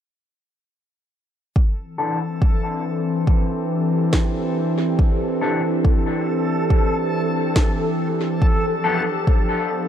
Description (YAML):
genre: ambient dub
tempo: 70 BPM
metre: 4/4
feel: swing 55% on 16ths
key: unclear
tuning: A4 = 440 Hz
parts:
  - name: warbly tape-like pad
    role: sustained chords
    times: 1.9-9.9 s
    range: E3 to A4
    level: -22 LUFS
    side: equal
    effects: chorus, built-in reverb, phaser
  - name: electronic kick drum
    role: drums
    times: 1.6-9.5 s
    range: none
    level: -17 LUFS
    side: equal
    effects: overdrive
  - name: backwards swelling texture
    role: texture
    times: 2.2-9.9 s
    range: A4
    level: -28 LUFS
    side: equal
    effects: built-in reverb
  - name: electric guitar at the edge of break-up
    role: stabs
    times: 2.0-9.0 s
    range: E3 to A4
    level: -27 LUFS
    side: left 3 dB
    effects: warbly pitch drift, low-pass filter, dub echo
  - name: electronic snare drum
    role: drums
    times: 4.1-7.7 s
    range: none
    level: -29 LUFS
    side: equal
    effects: overdrive, dub echo
room: light reverb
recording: none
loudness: -18 LUFS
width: side -9 dB against mid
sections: 1.6-9.9 A section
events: filter sweep on clean electric guitar 1.6-9.9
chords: 1.6 C69; 8.4 G9